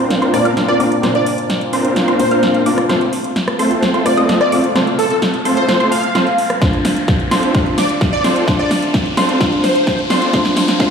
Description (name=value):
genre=EDM, festival progressive house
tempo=129 BPM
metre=4/4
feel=straight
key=Bb major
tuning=A4 = 440 Hz
part: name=felt-muted upright piano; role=accompaniment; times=0.0-10.9 s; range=Bb2 to C5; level=-19 LUFS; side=left 2 dB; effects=sidechain pumping, digital delay
part: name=wide unison pluck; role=arpeggios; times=0.0-10.9 s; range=C6 to F6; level=-24 LUFS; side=equal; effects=sidechain pumping, digital delay
part: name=supersaw chords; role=riff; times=0.0-10.9 s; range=A3 to F5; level=-18 LUFS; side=right 2 dB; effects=sidechain pumping, low-pass filter, digital delay
part: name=riser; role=sound effects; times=3.3-10.9 s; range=none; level=-28 LUFS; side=left 2 dB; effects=none
part: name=big-room dance drum kit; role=drums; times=0.1-10.9 s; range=hi-hat, rim click, snare drum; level=-19 LUFS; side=equal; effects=small room ambience
part: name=plucky unison lead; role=melody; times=0.3-10.0 s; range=A4 to F5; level=-19 LUFS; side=equal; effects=ensemble chorus, digital delay
part: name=electronic kick drum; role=drums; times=6.6-10.9 s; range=none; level=-18 LUFS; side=equal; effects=small room ambience
room=wet lush hall reverb, RT60 1.7 s, digital ambience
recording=played on a big sound system in a bare room, stone room reverb, high-pass filter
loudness=-12 LUFS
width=side -6 dB against mid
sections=0.0-10.9 A section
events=build-up 0.0-10.9; drum fill 0.0-10.9; filter sweep on supersaw synth 0.0-10.9; filter sweep 0.0-10.9; riser 3.3-10.9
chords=0.0 Bbadd9; 2.9 F; 6.6 Dm7